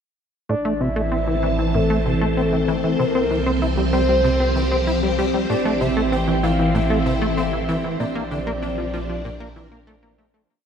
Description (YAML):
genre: ambient, sequencer-driven space music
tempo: 96 BPM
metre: 4/4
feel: straight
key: A phrygian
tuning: A4 = 438 Hz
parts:
  - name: soft octave-layered synth lead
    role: melody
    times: 0.5-10.1 s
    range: A4 to G5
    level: -24 LUFS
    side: left 1 dB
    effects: chorus, phaser, ping-pong delay
  - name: phased string machine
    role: sustained chords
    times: 0.5-10.5 s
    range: E3 to A5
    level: -23 LUFS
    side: equal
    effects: ensemble chorus, phaser
  - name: plucky analog bass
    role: riff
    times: 0.5-10.4 s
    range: A2 to E4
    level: -24 LUFS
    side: equal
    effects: wide subtle chorus, ping-pong delay
  - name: warm sub bass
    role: bass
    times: 0.5-10.5 s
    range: A1 to C2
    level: -25 LUFS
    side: equal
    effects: none
  - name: pulsing gated texture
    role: texture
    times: 0.5-10.5 s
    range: G4 to G5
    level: -39 LUFS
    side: right 2 dB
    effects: chorus, built-in reverb
room: wet huge ambient reverb, RT60 8.5 s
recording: in a vast, echoing space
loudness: -18 LUFS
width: side -7 dB against mid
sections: 0.5-10.5 A section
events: fade-in on synth texture 0.5-10.5; fade-out 7.2-10.5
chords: 0.5 Am; 3.0 Csus4; 5.5 Am; 8.0 Bbadd9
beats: | 0.49 1.12 1.75 2.37 | 3.00 3.62 4.25 4.87 | 5.50 6.12 6.75 7.37 | 8.00 8.62 9.24 9.87